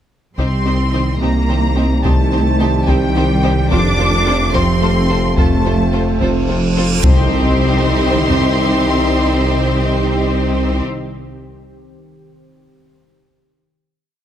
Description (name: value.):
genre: cinematic, hybrid orchestral and electronic film score.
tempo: 72 BPM (dotted quarters).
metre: 6/8.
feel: straight.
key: C dorian.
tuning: A4 = 442 Hz.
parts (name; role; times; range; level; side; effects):
warm studio violin section; melody; 0.4-10.8 s; G5 to D6; -22 LUFS; left 1 dB; none.
warm symphonic violin section; second line; 0.4-10.8 s; G4 to C5; -25 LUFS; equal; none.
rich symphonic viola section; accompaniment; 0.4-10.8 s; C4 to F4; -25 LUFS; left 1 dB; none.
deep dark ambient pad; sustained chords; 1.7-10.8 s; Eb3 to C5; -25 LUFS; equal; none.
mellow French horn section; sustained chords; 0.4-10.8 s; C4 to F4; -24 LUFS; left 3 dB; none.
warm trombone section; sustained chords; 0.4-10.8 s; C3 to A3; -25 LUFS; right 3 dB; none.
harp-like synth pluck; arpeggios; 0.4-6.9 s; C3 to F4; -24 LUFS; right 2 dB; chorus.
rich symphonic cello section; bass; 0.4-10.8 s; G3 to D4; -23 LUFS; right 1 dB; none.
rich symphonic double bass section; bass; 0.4-10.8 s; C2 to F2; -21 LUFS; right 1 dB; none.
warm sub bass; bass; 0.4-10.8 s; F1 to C2; -21 LUFS; left 1 dB; none.
warm tuba; bass; 0.4-10.8 s; F1 to C2; -22 LUFS; right 3 dB; none.
taiko ensemble; drums; 0.4-8.4 s; none; -18 LUFS; left 1 dB; none.
reverse cymbal and impact; sound effects; 6.2-8.7 s; none; -25 LUFS; right 1 dB; none.
room: light reverb.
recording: none.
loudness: -12 LUFS.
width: side -10 dB against mid.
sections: 0.4-7.0 theme; 7.0-10.4 final chord.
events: reverse cymbal 6.2-7.0; impact 7.0-8.7.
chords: 0.4 Cm; 3.7 F; 7.0 Cm.